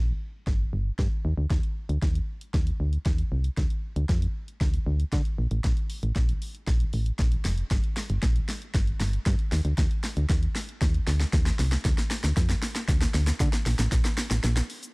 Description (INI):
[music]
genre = dance-pop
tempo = 116 BPM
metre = 4/4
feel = straight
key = unclear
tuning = A4 = 439 Hz
[part]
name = solid FM bass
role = bass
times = 0.0-14.6 s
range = F1 to D3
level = -26 LUFS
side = equal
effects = sidechain pumping
[part]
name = deep house drum kit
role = drums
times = 0.5-14.9 s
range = hi-hat, kick drum, shaker, snare drum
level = -26 LUFS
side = equal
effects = none
[sound]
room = little or no reverb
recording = dry, gritty hardware recording, cassette tape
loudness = -24 LUFS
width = side -30 dB against mid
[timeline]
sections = 0.0-14.9 A section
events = build-up 0.0-14.9; drum fill 0.0-14.9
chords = none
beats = 0.47 0.99 | 1.51 2.02 2.54 3.06 | 3.58 4.09 4.61 5.13 | 5.64 6.16 6.68 7.20 | 7.71 8.23 8.75 9.27 | 9.78 10.30 10.82 11.33 | 11.85 12.37 12.89 13.40 | 13.92 14.44